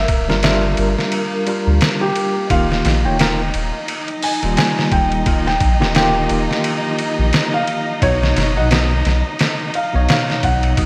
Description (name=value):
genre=trip hop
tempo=87 BPM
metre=4/4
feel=swing 58% on 16ths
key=unclear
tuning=A4 = 440 Hz
part: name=felt-muted upright piano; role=melody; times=0.0-10.9 s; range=G4 to Ab5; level=-24 LUFS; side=equal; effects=vintage 12-bit sampler grit, tape echo
part: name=dark studio violin section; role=sustained chords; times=0.0-10.9 s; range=Bb3 to Eb5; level=-28 LUFS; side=equal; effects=none
part: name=soft dub sub bass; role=bass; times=0.0-10.9 s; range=D1 to D2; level=-21 LUFS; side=equal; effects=none
part: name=trip hop sampler-style drum kit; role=drums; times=0.1-10.9 s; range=hi-hat, kick drum, ride cymbal, snare drum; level=-22 LUFS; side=equal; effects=vintage 12-bit sampler grit, studio ambience, gated reverb
part: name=bright tine electric piano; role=accompaniment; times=0.3-10.9 s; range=B2 to F#5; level=-24 LUFS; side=equal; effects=tremolo, tape echo
part: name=flickering grainy texture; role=texture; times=3.5-10.9 s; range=F3 to Eb4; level=-35 LUFS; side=equal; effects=none
room=light reverb, digital ambience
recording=bright 1980s-style digital production, vinyl crackle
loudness=-17 LUFS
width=mono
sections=0.0-10.9 A section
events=none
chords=0.0 Gm7; 2.5 Ebadd9; 8.0 Badd9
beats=0.43 1.12 1.81 | 2.50 3.19 3.88 4.57 | 5.26 5.95 6.64 7.33 | 8.02 8.71 9.40 10.09 | 10.78